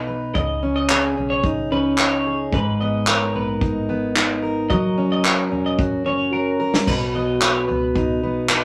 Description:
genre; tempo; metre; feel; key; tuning
acoustic pop; 110 BPM; 4/4; straight; B major; A4 = 440 Hz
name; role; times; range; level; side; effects
fingerpicked plugged-in steel-string acoustic guitar; accompaniment; 0.0-8.6 s; G#2 to B4; -23 LUFS; equal; none
vintage muted fingered electric bass; bass; 0.0-8.6 s; E1 to C#2; -35 LUFS; equal; none
twelve-string electric guitar; arpeggios; 0.3-7.8 s; A#4 to D#5; -28 LUFS; equal; none
unplugged drum kit; drums; 0.4-8.6 s; handclaps, kick drum, snare drum, splash cymbal; -23 LUFS; equal; none
room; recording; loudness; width
moderate small room reverb, RT60 0.5 s; none; -20 LUFS; mono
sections
0.0-8.6 A section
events
drum fill 6.3-6.9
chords
0.3 C#sus2; 2.5 G#madd9; 4.7 F#; 6.9 B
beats
| 0.35 0.89 1.44 1.98 | 2.52 3.07 3.61 4.15 | 4.70 5.24 5.78 6.33 | 6.87 7.41 7.96 8.50

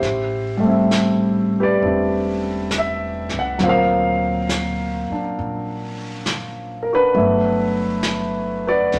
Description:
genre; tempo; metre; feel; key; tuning
jazz ballad; 67 BPM; 4/4; swing 68% on 8ths; unclear; A4 = 441 Hz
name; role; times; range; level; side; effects
warm concert grand piano; accompaniment; 0.0-9.0 s; A#2 to F#5; -20 LUFS; equal; none
upright bass; bass; 0.0-9.0 s; E1 to D2; -32 LUFS; equal; none
jazz brush drum kit; drums; 0.0-9.0 s; brushed snare drum, hi-hat, snare drum; -30 LUFS; equal; none
room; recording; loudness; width
wet studio reverb, RT60 0.8 s; none; -20 LUFS; mono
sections
0.0-9.0 A section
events
none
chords
0.0 Am9; 3.6 D7alt; 7.1 Gmaj13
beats
| 0.02 0.92 1.81 2.71 | 3.60 4.49 5.38 6.26 | 7.15 8.04 8.93

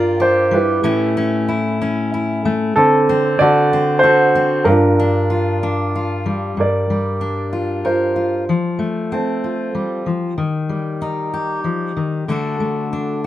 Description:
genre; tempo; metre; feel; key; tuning
folk; 94 BPM; 3/4; straight; G minor; A4 = 439 Hz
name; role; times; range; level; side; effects
warm concert grand piano; melody; 0.0-10.0 s; C4 to D5; -16 LUFS; right 2 dB; plate reverb
fingerpicked steel-string acoustic guitar; accompaniment; 0.0-13.3 s; G2 to Bb4; -19 LUFS; left 2 dB; none
room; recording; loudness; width
moderate studio ambience, RT60 0.5 s; none; -15 LUFS; side -13 dB against mid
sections
0.0-6.6 A section; 6.6-13.3 B section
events
none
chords
0.0 Gm7; 0.9 A7; 2.8 D5; 3.4 D7; 4.7 Gm7; 8.5 Fadd9; 10.4 Eb; 12.3 D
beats
0.22 | 0.86 1.49 2.13 | 2.76 3.40 4.03 | 4.67 5.30 5.94 | 6.57 7.21 7.84 | 8.48 9.11 9.75 | 10.38 11.02 11.65 | 12.29 12.92

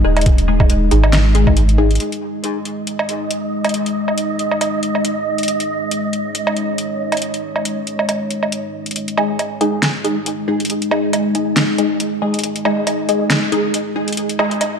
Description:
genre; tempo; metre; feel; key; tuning
deep dubstep; 138 BPM; 4/4; swing 56% on 16ths, half-time; unclear; A4 = 440 Hz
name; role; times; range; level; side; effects
deep dark ambient pad; sustained chords; 0.0-14.8 s; G#3 to D#5; -22 LUFS; left 1 dB; chorus, built-in reverb
filtered dub chord stab; stabs; 0.0-1.9, 9.2-14.6 s; G#3 to G#4; -20 LUFS; left 2 dB; phaser, wide subtle chorus, dub echo
soft dub sub bass; bass; 0.0-2.0, 9.0-14.8 s; D#1 to G#1; -14 LUFS; equal; high-pass filter
deep house drum kit; drums; 0.2-14.7 s; hi-hat, snare drum, woodblock; -20 LUFS; right 1 dB; overdrive
electronic kick drum; drums; 0.3-1.5 s; none; -14 LUFS; equal; none
wind-like tuned noise texture; texture; 2.6-9.0 s; D#5; -24 LUFS; right 5 dB; built-in reverb
room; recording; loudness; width
moderate lush hall reverb, RT60 1.9 s, digital ambience; dark, warm production; -15 LUFS; side -6 dB against mid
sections
0.0-2.0 A section; 2.0-9.0 B section; 9.0-14.8 C section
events
kick drops out 1.6-2.0; build-up 9.0-14.8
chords
0.0 G#5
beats
| 0.26 0.70 1.13 1.57 | 2.00 2.44 2.87 3.31 | 3.74 4.17 4.61 5.04 | 5.48 5.91 6.35 6.78 | 7.22 7.65 8.09 8.52 | 8.96 9.39 9.83 10.26 | 10.70 11.13 11.57 12.00 | 12.44 12.87 13.31 13.74 | 14.18 14.61

